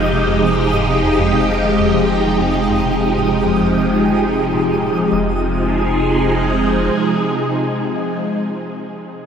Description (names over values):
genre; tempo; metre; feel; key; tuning
ambient, sequencer-driven space music; 99 BPM; 4/4; straight; F minor; A4 = 440 Hz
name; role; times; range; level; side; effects
phased string machine; sustained chords; 0.0-8.3 s; C3 to Ab4; -15 LUFS; equal; ensemble chorus, phaser
plucky analog bass; riff; 0.0-5.4 s; F2 to Ab3; -25 LUFS; equal; analog chorus, analog delay
warm sub bass; bass; 0.0-6.9 s; F1; -24 LUFS; equal; none
twinkling granular texture; texture; 0.0-5.1 s; Eb6; -28 LUFS; right 2 dB; built-in reverb
room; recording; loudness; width
wet huge ambient reverb, RT60 7.6 s; dreamy mix soaked in reverb; -14 LUFS; side -7 dB against mid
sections
0.0-5.1 A section; 5.1-7.5 B section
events
fade-out on analog synth bass 0.0-5.1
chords
0.0 Fm7